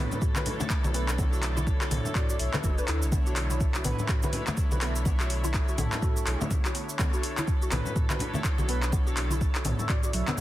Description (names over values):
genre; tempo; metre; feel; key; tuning
afro house; 124 BPM; 4/4; swing 59% on 16ths; B minor; A4 = 440 Hz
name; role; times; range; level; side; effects
expressive synth lead; melody; 0.0-10.4 s; A4 to E5; -40 LUFS; right 1 dB; analog chorus, dub echo
dark studio string section; sustained chords; 0.0-10.4 s; D3 to C#5; -40 LUFS; right 1 dB; sidechain pumping
mallet-like synth pluck; arpeggios; 0.0-10.4 s; F#3 to B4; -37 LUFS; right 1 dB; ensemble chorus, sidechain pumping, dub echo
mellow synth brass; stabs; 0.0-10.4 s; D4 to C#5; -39 LUFS; left 1 dB; chorus, sidechain pumping, dub echo
warm sub bass; bass; 0.0-10.4 s; F#1 to D2; -30 LUFS; equal; sidechain pumping
afro-pop drum kit; drums; 0.1-10.4 s; cabasa, handclaps, hi-hat, toms; -32 LUFS; equal; overdrive
congas; percussion; 0.1-10.4 s; none; -34 LUFS; left 2 dB; none
electronic kick drum; drums; 0.2-10.0 s; none; -28 LUFS; equal; overdrive
room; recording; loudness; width
digital ambience; dense, heavily limited modern master; -25 LUFS; side -14 dB against mid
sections
0.0-10.4 A section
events
none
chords
0.0 Bm11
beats
0.22 0.70 | 1.19 1.67 2.15 2.64 | 3.12 3.60 4.09 4.57 | 5.06 5.54 6.02 6.51 | 6.99 7.48 7.96 8.44 | 8.93 9.41 9.89 10.38